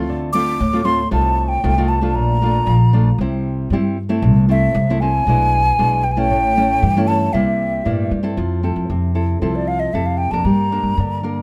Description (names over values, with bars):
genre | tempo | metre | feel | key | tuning
samba and choro | 116 BPM | 4/4 | straight | F major from 8.4 s | A4 = 444 Hz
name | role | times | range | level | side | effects
nylon-string guitar | accompaniment | 0.0-11.4 s | G2 to Bb4 | -23 LUFS | equal | none
upright bass | bass | 0.0-11.4 s | A1 to A2 | -21 LUFS | equal | none
breathy mellow silver concert flute | melody | 0.3-11.4 s | A4 to D6 | -21 LUFS | equal | none
room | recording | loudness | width
light reverb | none | -17 LUFS | mono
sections
0.0-8.4 A section; 8.4-11.4 B section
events
flute solo 8.4-11.4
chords
0.1 Dm7; 1.1 F7/C; 2.2 Bbmaj7; 3.2 C; 4.2 Am/C; 5.3 E7/B; 6.3 A; 7.3 C7; 8.4 Fmaj7; 10.5 Gm